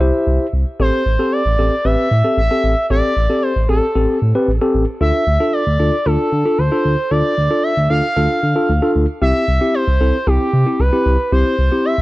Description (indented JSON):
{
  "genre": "synth-pop",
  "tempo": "114 BPM",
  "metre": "4/4",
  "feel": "straight",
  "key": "A minor",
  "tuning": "A4 = 441 Hz",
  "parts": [
    { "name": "expressive portamento lead", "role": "melody", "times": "0.0-12.0 s", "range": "G4 to F5", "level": "-19 LUFS", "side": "equal", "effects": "chorus" },
    { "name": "mellow tine electric piano", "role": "accompaniment", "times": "0.0-11.9 s", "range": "C4 to C5", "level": "-18 LUFS", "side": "left 1 dB", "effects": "none" },
    { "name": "smooth synth bass", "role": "bass", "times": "0.0-12.0 s", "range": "A1 to D3", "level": "-16 LUFS", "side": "equal", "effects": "none" }
  ],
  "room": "little or no reverb",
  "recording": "dry, gritty hardware recording",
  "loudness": "-13 LUFS",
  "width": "side -18 dB against mid",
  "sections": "0.8-12.0 A section",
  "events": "none",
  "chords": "0.0 C; 0.8 Am7; 5.0 Dm; 9.2 C"
}